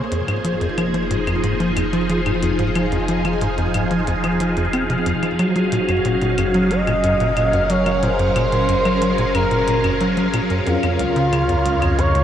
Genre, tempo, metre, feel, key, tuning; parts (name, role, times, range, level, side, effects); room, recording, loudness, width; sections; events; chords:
ambient, sequencer-driven space music; 91 BPM; 4/4; straight; F phrygian; A4 = 441 Hz
phased string machine; sustained chords; 0.0-12.2 s; Bb2 to F5; -21 LUFS; equal; ensemble chorus, phaser
tight sequencer bass; riff; 0.0-12.2 s; Db2 to C4; -21 LUFS; equal; tape echo
warm sub bass; bass; 0.0-12.2 s; F1 to Db2; -27 LUFS; equal
electronic hi-hat and claves; percussion; 0.1-12.2 s; -32 LUFS; left 4 dB; tape echo
expressive portamento lead; melody; 5.4-12.2 s; F4 to Eb5; -20 LUFS; equal; chorus, tape echo
wet huge ambient reverb, RT60 8.2 s; cassette tape; -16 LUFS; side -10 dB against mid
0.0-12.2 A section
0.1 Fm7; 5.4 Gbmaj7; 10.7 Db